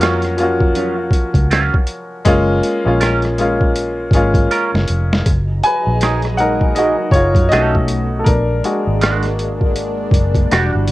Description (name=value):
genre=R&B, neo-soul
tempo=80 BPM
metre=4/4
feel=swing 59% on 16ths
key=F# major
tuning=A4 = 442 Hz
part: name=clean electric guitar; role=second line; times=0.0-10.7 s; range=F#3 to A#4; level=-19 LUFS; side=right 4 dB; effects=wah, warbly pitch drift
part: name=clear grand piano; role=accompaniment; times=0.0-10.9 s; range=E#3 to G#5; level=-17 LUFS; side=left 1 dB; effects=none
part: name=vintage muted fingered electric bass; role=bass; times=0.0-10.9 s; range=E1 to F#2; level=-18 LUFS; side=equal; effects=none
part: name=boom bap sampler-style drum kit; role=drums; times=0.0-10.9 s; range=hi-hat, kick drum, rim click, snare drum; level=-16 LUFS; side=equal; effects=overdrive
part: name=lush unison pad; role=sustained chords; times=5.3-10.9 s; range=E3 to A#5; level=-24 LUFS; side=equal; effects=chorus, phaser
room=light reverb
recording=worn, warbling old tape, cassette tape, warbly pitch drift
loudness=-13 LUFS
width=side -17 dB against mid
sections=0.0-5.3 A section; 5.3-10.9 A section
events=drum fill 4.5-5.3; grand piano solo 5.3-10.9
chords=0.0 D#m9 (rootless); 2.3 F#maj7; 5.3 F#69; 7.5 B9; 8.3 A#7b13